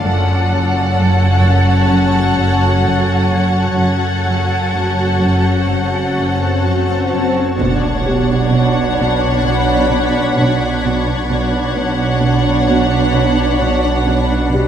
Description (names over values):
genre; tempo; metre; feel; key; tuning
cinematic, suspense film score; 65 BPM; 4/4; straight; B minor; A4 = 440 Hz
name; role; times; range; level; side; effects
rich studio violin section; melody; 0.0-14.7 s; F#5; -21 LUFS; left 1 dB; none
rich studio violin section; second line; 0.0-14.7 s; C#4 to C#5; -21 LUFS; left 3 dB; none
shimmering ambient pad; sustained chords; 0.0-14.7 s; D4 to B5; -23 LUFS; right 1 dB; chorus, built-in reverb, phaser
rich studio double bass section; bass; 0.0-14.7 s; F#1 to B1; -19 LUFS; right 2 dB; none
rich studio cello section; riff; 0.1-14.7 s; F#2 to B3; -22 LUFS; right 2 dB; none
warm studio cello section; bass; 0.1-14.7 s; F#2 to B2; -19 LUFS; right 1 dB; none
warm studio violin section; texture; 0.1-14.5 s; C#6 to A6; -29 LUFS; left 4 dB; none
swell and impact; sound effects; 5.8-11.3 s; none; -23 LUFS; left 2 dB; none
rich studio viola section; accompaniment; 7.6-14.7 s; D4; -21 LUFS; right 1 dB; none
warm concert grand piano; texture; 8.1-14.7 s; G4; -25 LUFS; left 3 dB; none
room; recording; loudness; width
moderate scoring stage reverb, RT60 1.7 s; none; -12 LUFS; side -9 dB against mid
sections
0.0-7.6 A section; 7.6-14.7 A section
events
swell 5.8-7.6; impact 7.6-11.3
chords
0.1 F#m; 7.6 Bmadd9